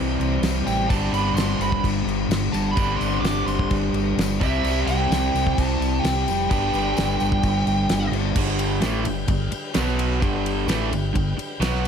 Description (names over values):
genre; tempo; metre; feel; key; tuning
classic rock; 129 BPM; 4/4; straight; G major; A4 = 442 Hz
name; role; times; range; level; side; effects
tonewheel organ; sustained chords; 0.0-11.9 s; C4 to Ab5; -35 LUFS; equal; slow rotary speaker
overdriven electric guitar; riff; 0.0-11.9 s; G2 to C4; -27 LUFS; left 13 dB; phaser
overdriven semi-hollow guitar; riff; 0.0-11.9 s; G2 to G4; -26 LUFS; right 13 dB; none
overdriven fingered electric bass; bass; 0.0-11.9 s; F1 to C2; -26 LUFS; equal; none
damped 70s drum kit; drums; 0.2-11.9 s; crash cymbal, kick drum, ride cymbal, snare drum; -26 LUFS; equal; none
tambourine; percussion; 0.2-11.7 s; none; -43 LUFS; left 13 dB; none
fuzz lead guitar; melody; 0.7-8.1 s; E5 to D6; -27 LUFS; right 1 dB; distortion, slapback echo
room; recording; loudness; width
light reverb, small room reverb; none; -20 LUFS; side -7 dB against mid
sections
0.0-8.4 A section; 8.4-11.9 B section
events
none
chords
0.0 C; 0.9 Gsus4; 4.4 C; 6.5 G; 9.8 B5; 10.2 G